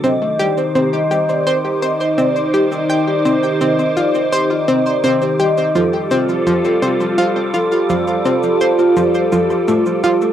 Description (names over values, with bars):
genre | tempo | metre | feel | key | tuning
ambient, sequencer-driven space music | 84 BPM | 4/4 | straight | unclear | A4 = 441 Hz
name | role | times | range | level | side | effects
phased analog pad | sustained chords | 0.0-10.3 s | Eb3 to C5 | -18 LUFS | equal | phaser, chorus, cassette tape
vibraphone with medium mallets | arpeggios | 0.0-10.3 s | F4 to Eb5 | -19 LUFS | equal | auto-pan, cassette tape, tape echo
analog pluck | riff | 0.0-10.3 s | F3 to G5 | -17 LUFS | equal | chorus, cassette tape, tape echo
cabasa and woodblock | percussion | 0.0-10.3 s | none | -39 LUFS | equal | overdrive, cassette tape, tape echo
wind-like tuned noise texture | texture | 0.0-10.3 s | D6 | -30 LUFS | right 2 dB | built-in reverb, cassette tape
room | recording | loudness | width
wet small room ambience, RT60 0.5 s | home recording on cassette | -13 LUFS | side -10 dB against mid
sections
0.0-10.3 A section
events
fade-in on synth texture 0.0-10.3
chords
0.0 Cmadd9; 5.8 Fadd9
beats
| 0.04 0.75 1.47 2.18 | 2.90 3.61 4.33 5.04 | 5.75 6.47 7.18 7.90 | 8.61 9.32 10.04